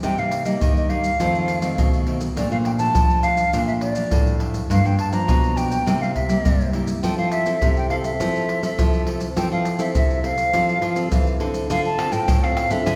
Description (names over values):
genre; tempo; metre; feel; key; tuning
samba and choro; 103 BPM; 4/4; straight; F major; A4 = 439 Hz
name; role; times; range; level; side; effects
hollow concert flute; melody; 0.0-13.0 s; D5 to Bb5; -26 LUFS; equal; none
nylon-string guitar; accompaniment; 0.0-13.0 s; F2 to A4; -28 LUFS; equal; none
nylon-string guitar; bass; 0.0-13.0 s; G2 to F3; -27 LUFS; equal; none
maracas, surdo, pandeiro and tamborim; percussion; 0.0-13.0 s; none; -25 LUFS; equal; none
room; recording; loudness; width
wet scoring stage reverb, RT60 1.8 s; recorded in a church or concert hall; -21 LUFS; mono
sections
0.0-11.7 A section; 11.7-13.0 B section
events
none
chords
0.0 Cm7; 1.2 F7; 2.4 Bbmaj7; 4.7 Gm7; 5.9 C7; 7.0 Fmaj7; 11.7 Dm7